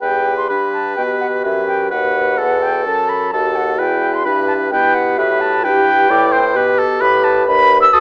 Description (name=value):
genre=quick classical-period movement for wind quintet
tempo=129 BPM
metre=4/4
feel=rubato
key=E minor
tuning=A4 = 440 Hz
part: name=concert flute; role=melody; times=0.0-8.0 s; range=E5 to E6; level=-18 LUFS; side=equal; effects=none
part: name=warm oboe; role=second line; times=0.0-8.0 s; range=A4 to D5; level=-22 LUFS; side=equal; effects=none
part: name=mellow clarinet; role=accompaniment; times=0.0-8.0 s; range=D4 to G4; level=-27 LUFS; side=equal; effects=none
part: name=warm bassoon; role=bass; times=0.0-7.9 s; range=D#2 to B2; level=-23 LUFS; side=equal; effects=none
part: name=mellow French horn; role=accompaniment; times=1.0-8.0 s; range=E4 to B4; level=-23 LUFS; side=equal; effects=none
room=moderate large studio reverb, RT60 1.4 s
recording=small speaker sound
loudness=-15 LUFS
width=mono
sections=0.0-8.0 A section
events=none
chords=0.0 Em; 1.9 B7/D#; 3.8 Em; 5.6 Em/G; 7.5 B/D#